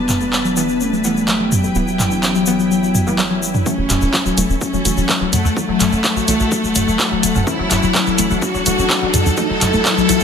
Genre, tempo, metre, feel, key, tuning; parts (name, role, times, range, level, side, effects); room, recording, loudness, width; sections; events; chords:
melodic techno; 126 BPM; 4/4; straight; F# phrygian; A4 = 440 Hz
expressive synth lead; melody; 0.0-10.2 s; F#3 to A4; -21 LUFS; equal; chorus, sidechain pumping, dub echo
deep dark ambient pad; sustained chords; 0.0-10.2 s; E4 to A5; -29 LUFS; left 1 dB; chorus, built-in reverb, vintage 12-bit sampler grit, sidechain pumping
tight sequenced synth; arpeggios; 0.0-10.2 s; F#3 to D4; -21 LUFS; left 6 dB; chorus, phaser, sidechain pumping, digital delay
synth brass stab; stabs; 0.0-10.2 s; E3 to B3; -25 LUFS; right 2 dB; chorus, sidechain pumping, digital delay
tight sequencer bass; bass; 0.0-10.2 s; E1 to F#2; -24 LUFS; equal; sidechain pumping
rich symphonic string section; texture; 0.0-10.2 s; D4 to A5; -27 LUFS; left 1 dB; sidechain pumping
punchy analog drum machine; drums; 0.1-10.2 s; handclaps, hi-hat, toms; -19 LUFS; right 1 dB
tube shaker; percussion; 0.1-10.2 s; -25 LUFS; left 4 dB
bright studio violin section; second line; 3.7-10.2 s; A3 to A4; -24 LUFS; right 1 dB; sidechain pumping, digital delay
electronic kick drum; drums; 3.7-9.9 s; -26 LUFS; equal
riser; sound effects; 6.7-10.2 s; -26 LUFS; right 2 dB
moderate recital hall reverb, RT60 1.5 s; -14 LUFS; side -7 dB against mid
0.0-3.7 A section; 3.7-10.2 B section
filter sweep on drum 0.0-3.7; filter sweep on synth arpeggio sound 0.0-3.7; filter sweep on ambient pad 0.0-3.7; build-up 3.7-10.2; filter sweep on synth stab 3.7-10.2; riser 6.7-10.2
0.0 Em; 3.7 F#m7